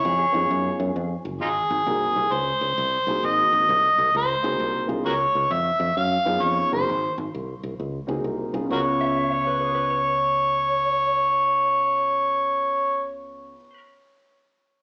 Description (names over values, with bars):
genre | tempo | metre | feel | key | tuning
electric blues shuffle | 132 BPM | 4/4 | swing 64% on 8ths | Db mixolydian | A4 = 438 Hz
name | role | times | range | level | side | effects
overdriven harmonica | melody | 0.0-13.1 s | Eb4 to F5 | -23 LUFS | equal | slapback echo
electric guitar through a small old amp | second line | 0.0-1.1, 9.0-13.8 s | Ab4 to Fb5 | -36 LUFS | equal | slapback echo
fingered electric bass | bass | 0.0-13.5 s | Gb1 to Gb2 | -33 LUFS | equal | none
dark upright piano | accompaniment | 0.3-13.6 s | Db3 to Cb5 | -33 LUFS | equal | none
room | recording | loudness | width
light reverb, small room reverb | live gig heard through the venue's PA, club reverb, small speaker sound | -23 LUFS | mono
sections
0.0-8.7 A section; 8.7-12.3 B section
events
none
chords
0.0 Db7; 1.4 Ab7; 5.1 Db7; 6.9 Ab7; 8.7 Db7